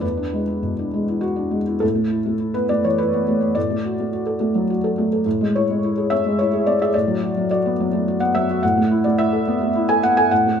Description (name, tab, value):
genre	neoclassical minimalist piano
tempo	106 BPM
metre	3/4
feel	rubato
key	A major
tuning	A4 = 441 Hz
part	felt-muted upright piano	solo	0.0-10.6 s	E2 to G#5	-17 LUFS	equal	none
room	moderate stone room reverb, RT60 1.0 s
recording	band playing live in one room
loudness	-17 LUFS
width	side -7 dB against mid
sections	0.0-1.8 A section; 1.8-10.6 B section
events	none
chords	0.0 E7; 1.8 Asus2; 3.6 D/A; 5.2 C#m/A; 6.9 Bm/A; 8.6 Asus2